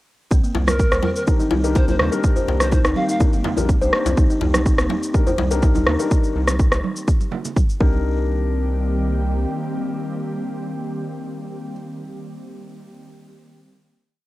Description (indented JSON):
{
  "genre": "afro house",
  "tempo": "124 BPM",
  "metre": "4/4",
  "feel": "straight",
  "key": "C minor",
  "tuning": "A4 = 440 Hz",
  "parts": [
    { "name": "ethereal airy pad", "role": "sustained chords", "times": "1.0-11.7 s", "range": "Eb3 to G4", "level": "-30 LUFS", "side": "equal", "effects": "ensemble chorus, built-in reverb, sidechain pumping" },
    { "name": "buzzing kalimba", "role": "arpeggios", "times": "0.3-8.3 s", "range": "G3 to C5", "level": "-26 LUFS", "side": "equal", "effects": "sidechain pumping, tape echo" },
    { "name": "round analog bass", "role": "bass", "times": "0.3-9.5 s", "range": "G1 to Eb2", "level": "-22 LUFS", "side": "equal", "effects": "tube saturation, sidechain pumping" },
    { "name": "electronic cabasa and rim click", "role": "drums", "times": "0.3-7.8 s", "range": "none", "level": "-23 LUFS", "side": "equal", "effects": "cassette tape" },
    { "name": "electronic kick drum", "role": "drums", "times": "0.3-7.9 s", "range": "none", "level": "-17 LUFS", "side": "equal", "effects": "cassette tape" },
    { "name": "congas", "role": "percussion", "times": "0.5-8.0 s", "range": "none", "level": "-29 LUFS", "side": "right 6 dB", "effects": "none" },
    { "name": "djembe", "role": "percussion", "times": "0.5-5.8 s", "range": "none", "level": "-26 LUFS", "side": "left 4 dB", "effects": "none" },
    { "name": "breathy polished pan flute", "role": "melody", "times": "0.7-3.2 s", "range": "Bb4 to F5", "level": "-27 LUFS", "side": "equal", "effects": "cassette tape, tape echo" },
    { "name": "felt-muted upright piano", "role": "stabs", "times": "1.3-11.7 s", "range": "D4 to C5", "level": "-28 LUFS", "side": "left 6 dB", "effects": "sidechain pumping, tape echo" }
  ],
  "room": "light reverb, studio reverb",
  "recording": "home recording on cassette",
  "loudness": "-17 LUFS",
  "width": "side -17 dB against mid",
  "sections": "0.3-8.0 groove; 8.0-11.9 final hit",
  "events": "none",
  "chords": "0.3 Cm7"
}